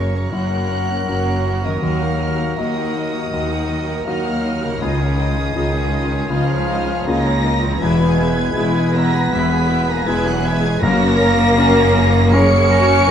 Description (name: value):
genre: cinematic, emotional film score for orchestra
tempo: 80 BPM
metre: 4/4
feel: rubato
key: unclear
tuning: A4 = 443 Hz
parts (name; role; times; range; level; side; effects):
- warm symphonic violin section; melody; 0.0-13.1 s; Db6 to Db7; -26 LUFS; equal; none
- clear oboe; second line; 0.0-13.1 s; Ab4 to B4; -28 LUFS; right 2 dB; none
- clear symphonic violin section; second line; 0.0-13.1 s; Eb4 to G#5; -30 LUFS; right 1 dB; none
- mellow clarinet; second line; 0.0-13.1 s; Db4 to Gb4; -30 LUFS; left 1 dB; none
- mellow hollow flute section; second line; 0.0-13.1 s; Db5 to Db6; -26 LUFS; equal; none
- clear grand piano; accompaniment; 0.0-13.1 s; E1 to Ab4; -23 LUFS; left 2 dB; none
- clear studio viola section; accompaniment; 0.0-13.1 s; Gb3 to Bb4; -25 LUFS; right 1 dB; none
- mellow French horn section; sustained chords; 0.0-13.1 s; Db3 to Db4; -21 LUFS; left 1 dB; none
- concert harp; arpeggios; 0.0-13.1 s; E2 to F5; -30 LUFS; left 7 dB; none
- rich symphonic cello section; bass; 0.0-13.1 s; Db2 to Gb2; -23 LUFS; right 1 dB; none
- rich symphonic double bass section; bass; 0.0-13.1 s; E1 to Eb2; -23 LUFS; right 1 dB; none
- timpani; percussion; 10.8-11.9 s; Gb2; -27 LUFS; equal; none
room: moderate stone room reverb, RT60 1.2 s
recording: dark, warm production, nothing above 10.9 kHz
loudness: -15 LUFS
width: side -8 dB against mid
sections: 0.0-13.1 A section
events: none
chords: 0.0 Gb; 1.8 Ebm; 4.8 Dbadd9; 7.8 E; 10.8 Gb